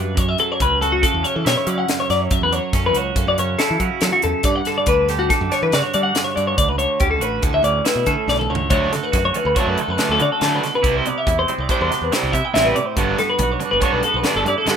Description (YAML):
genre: math rock and midwest emo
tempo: 141 BPM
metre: 5/4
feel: straight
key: D major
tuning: A4 = 436 Hz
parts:
  - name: twangy electric guitar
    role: accompaniment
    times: 0.0-14.8 s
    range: D2 to G4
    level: -25 LUFS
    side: right 16 dB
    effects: spring reverb
  - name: twelve-string electric guitar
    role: arpeggios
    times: 0.0-14.8 s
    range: F#4 to G5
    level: -19 LUFS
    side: left 3 dB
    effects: wide subtle chorus
  - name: modern bright picked electric bass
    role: bass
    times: 0.0-14.8 s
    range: G1 to G3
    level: -24 LUFS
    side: equal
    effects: none
  - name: crisp fusion drum kit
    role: drums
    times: 0.2-14.8 s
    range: hi-hat, kick drum, snare drum, toms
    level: -23 LUFS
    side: equal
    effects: none
  - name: cranked stack guitar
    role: riff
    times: 8.7-14.8 s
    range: C3 to E4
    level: -23 LUFS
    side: right 3 dB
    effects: overdrive
room: small room ambience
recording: rough home demo mix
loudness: -16 LUFS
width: side -7 dB against mid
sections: 0.0-8.7 A section; 8.7-14.8 B section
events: drum fill 8.3-8.7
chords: 0.2 F#m7; 4.5 Gmaj9; 6.6 Dmaj7; 10.8 Cmaj7; 13.0 Gmaj7